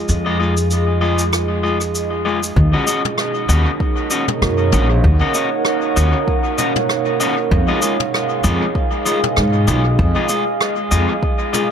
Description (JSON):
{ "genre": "ambient dub", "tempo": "97 BPM", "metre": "4/4", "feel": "swing 56% on 16ths", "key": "Eb minor", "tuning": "A4 = 436 Hz", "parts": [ { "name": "deep dark ambient pad", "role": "sustained chords", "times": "0.0-11.7 s", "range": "Eb4 to Gb5", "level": "-21 LUFS", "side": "right 3 dB", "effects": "chorus, built-in reverb" }, { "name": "upright bass", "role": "bass", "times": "0.0-11.1 s", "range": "Bb1 to Ab2", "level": "-16 LUFS", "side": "equal", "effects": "none" }, { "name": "jazz brush drum kit", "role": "drums", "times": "0.1-11.7 s", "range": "cabasa, rim click, toms", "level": "-23 LUFS", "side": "equal", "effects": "dub echo" }, { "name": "electric guitar at the edge of break-up", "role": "stabs", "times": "0.3-11.7 s", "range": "Ab3 to Eb5", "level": "-21 LUFS", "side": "left 3 dB", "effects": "dub echo" }, { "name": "electronic kick drum", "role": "drums", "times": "2.6-11.4 s", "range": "none", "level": "-20 LUFS", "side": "equal", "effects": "overdrive" } ], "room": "moderate spring reverb, RT60 1.4 s, studio reverb", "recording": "none", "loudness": "-14 LUFS", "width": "side -8 dB against mid", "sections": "0.0-2.6 A section; 2.6-11.7 B section", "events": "none", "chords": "0.0 Fm7; 2.6 Ebm7; 7.5 Fm7" }